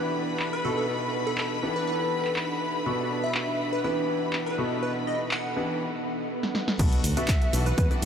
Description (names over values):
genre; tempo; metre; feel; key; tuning
piano house; 122 BPM; 4/4; straight; B minor; A4 = 439 Hz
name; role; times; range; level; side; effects
clear chamber violin section; sustained chords; 0.0-8.1 s; F#4 to B5; -34 LUFS; left 1 dB; sidechain pumping
clear concert grand piano; riff; 0.0-8.0 s; B2 to B4; -30 LUFS; left 1 dB; wide subtle chorus, sidechain pumping, ping-pong delay
ethereal airy pad; texture; 0.0-8.1 s; D4 to B5; -34 LUFS; right 1 dB; ensemble chorus, built-in reverb, sidechain pumping
punchy analog drum machine; drums; 0.4-8.1 s; crash cymbal, handclaps, hi-hat, shaker, snare drum; -34 LUFS; equal; low-pass filter on snare, low-pass filter on hats, low-pass filter on cymbals, low-pass filter on perc
plucky unison lead; melody; 0.5-7.9 s; A4 to F#5; -33 LUFS; equal; ping-pong delay
swell and impact; sound effects; 6.0-8.1 s; none; -35 LUFS; equal; none
modern bright fingered electric bass; bass; 6.8-8.1 s; B1 to E2; -26 LUFS; equal; sidechain pumping
electronic kick drum; drums; 6.8-7.9 s; none; -24 LUFS; equal; none
room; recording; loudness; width
wet huge ambient reverb, RT60 9.3 s; dreamy mix soaked in reverb; -24 LUFS; side -8 dB against mid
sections
0.0-6.8 A section; 6.8-8.1 B section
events
swell 6.0-6.8; drum fill 6.4-6.8; drop 6.8-8.1; impact 6.8-8.1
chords
0.0 Em7; 0.6 B7; 1.6 Em7; 2.9 Bm7; 3.8 Em7; 4.6 B7; 5.6 Em7; 6.8 Bm7